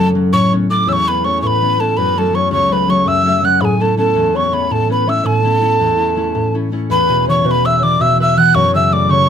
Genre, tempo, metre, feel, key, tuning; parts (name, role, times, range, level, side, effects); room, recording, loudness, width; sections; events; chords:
celtic folk; 109 BPM (dotted quarters); 9/8; straight; A major; A4 = 441 Hz
breathy hollow mid whistle; melody; 0.0-9.3 s; G#5 to F#6; -15 LUFS; equal
mellow hollow baroque flute; second line; 0.0-9.3 s; G#4 to F#5; -19 LUFS; right 1 dB
concert harp; accompaniment; 0.0-9.3 s; C#2 to B4; -16 LUFS; left 1 dB
light reverb; close, detailed microphones; -12 LUFS; side -8 dB against mid
0.0-6.9 A section; 6.9-9.3 B section
0.3 Aadd9; 2.0 F#m; 3.6 Aadd9; 8.5 F#m